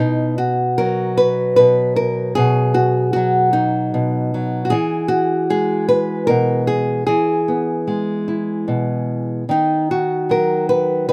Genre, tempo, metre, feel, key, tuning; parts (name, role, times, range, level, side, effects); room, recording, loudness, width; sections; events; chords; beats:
folk, solo fingerstyle acoustic guitar; 50 BPM (dotted quarters); 6/8; rubato; B major; A4 = 442 Hz
nylon-string guitar; solo; 0.0-11.1 s; B2 to B4; -18 LUFS; equal
light reverb; rough home demo mix; -18 LUFS; mono
0.0-11.1 A section
0.0 B; 4.7 E; 9.5 B/D#
1.18 | 2.37 3.55 | 4.72 5.90 | 7.08 8.27 | 9.48 10.68